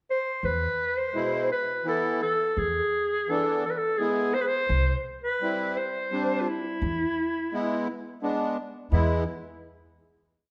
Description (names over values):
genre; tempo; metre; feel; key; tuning
klezmer; 85 BPM; 3/4; straight; unclear; A4 = 440 Hz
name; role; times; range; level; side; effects
clear clarinet; melody; 0.1-9.2 s; E4 to C5; -29 LUFS; equal; none
upright bass; bass; 0.4-9.2 s; C2 to E2; -28 LUFS; equal; none
accordion; accompaniment; 1.1-9.2 s; B2 to E4; -32 LUFS; equal; light tremolo tuning
room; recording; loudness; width
wet recital hall reverb, RT60 1.5 s; none; -27 LUFS; mono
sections
0.0-0.4 pickup bar; 0.4-8.9 A section; 8.9-10.5 final chord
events
none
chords
0.4 E; 4.7 C; 6.8 E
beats
| 0.44 1.15 1.86 | 2.58 3.29 4.00 | 4.71 5.41 6.12 | 6.82 7.52 8.22 | 8.92